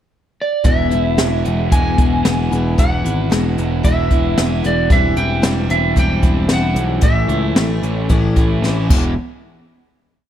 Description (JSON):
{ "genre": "folk rock and heartland rock", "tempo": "113 BPM", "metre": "4/4", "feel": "straight", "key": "unclear", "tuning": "A4 = 443 Hz", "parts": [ { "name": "electric slide guitar", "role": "melody", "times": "0.4-8.6 s", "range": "D5 to G#5", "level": "-21 LUFS", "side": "right 3 dB", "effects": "slapback echo" }, { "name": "picked steel-string acoustic guitar", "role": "accompaniment", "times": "0.6-9.1 s", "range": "E2 to E4", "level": "-23 LUFS", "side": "left 6 dB", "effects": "none" }, { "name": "picked electric bass", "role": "bass", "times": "0.6-9.2 s", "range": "E1 to C#2", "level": "-19 LUFS", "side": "equal", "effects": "none" }, { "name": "jazz brush drum kit", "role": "drums", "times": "0.6-9.0 s", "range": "crash cymbal, hi-hat, kick drum, snare drum", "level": "-16 LUFS", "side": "equal", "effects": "none" }, { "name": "crunchy overdriven guitar", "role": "riff", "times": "0.7-9.1 s", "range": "E2 to E4", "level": "-22 LUFS", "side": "right 2 dB", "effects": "none" } ], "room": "light reverb, small room ambience", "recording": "none", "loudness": "-14 LUFS", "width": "side -10 dB against mid", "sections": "0.0-0.7 pickup bar; 0.7-9.2 verse; 9.2-10.3 final hit", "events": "drum fill 8.6-9.2", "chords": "0.0 N.C.; 0.7 E; 4.9 C/E; 7.0 A; 8.9 E; 9.2 N.C.", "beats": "0.12 | 0.65 1.19 1.72 2.25 | 2.78 3.32 3.85 4.38 | 4.91 5.45 5.98 6.51 | 7.05 7.58 8.11 8.65" }